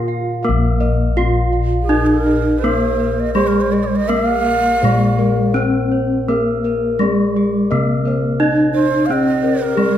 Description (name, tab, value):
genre	Javanese gamelan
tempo	83 BPM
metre	4/4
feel	uneven beats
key	Bb slendro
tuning	A4 = 440 Hz
part	gamelan-type bronze metallophone	melody	0.0-10.0 s	Ab3-45c to F4+25c	-17 LUFS	equal	none
part	gamelan-type bossed gongs	arpeggios	0.0-10.0 s	Ab4-45c to F5+25c	-24 LUFS	left 7 dB	none
part	gamelan-type bronze metallophone	arpeggios	0.0-10.0 s	Ab4-45c to F5+25c	-25 LUFS	right 3 dB	none
part	gamelan-type bossed gongs	bass	0.0-9.9 s	Bb1 to Bb4	-20 LUFS	left 1 dB	none
part	breathy hollow bass bansuri	second line	1.8-10.0 s	Ab4-44c to F5+23c	-20 LUFS	right 4 dB	none
room	moderate recital hall reverb, RT60 1.6 s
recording	none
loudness	-14 LUFS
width	side -10 dB against mid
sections	0.4-10.0 A section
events	none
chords	none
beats	| 0.43 1.17 1.90 2.63 | 3.36 4.09 4.82 5.56 | 6.29 7.01 7.72 8.41 | 9.09 9.76